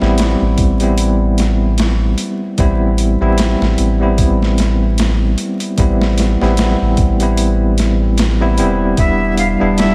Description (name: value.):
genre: trip hop.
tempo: 75 BPM.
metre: 4/4.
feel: swing 56% on 16ths.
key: A minor.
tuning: A4 = 440 Hz.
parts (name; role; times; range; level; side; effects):
bell-like tine electric piano; accompaniment; 0.0-9.9 s; G3 to E4; -18 LUFS; equal; tremolo, tape echo.
soft dub sub bass; bass; 0.0-9.9 s; E1 to A1; -18 LUFS; equal; none.
boom bap sampler-style drum kit; drums; 0.0-9.9 s; hi-hat, kick drum, snare drum; -21 LUFS; equal; overdrive, studio reverb.
breathy bright jazz flute; melody; 9.0-9.9 s; E5 to F5; -20 LUFS; equal; vintage 12-bit sampler grit.
deep dark ambient pad; sustained chords; 9.5-9.9 s; G3 to G4; -22 LUFS; equal; chorus, built-in reverb.
room: moderate lush hall reverb, RT60 2.1 s.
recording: dreamy mix soaked in reverb, vinyl crackle.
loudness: -14 LUFS.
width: mono.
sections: 0.0-9.9 A section.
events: none.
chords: 0.0 Am9; 9.0 Em7.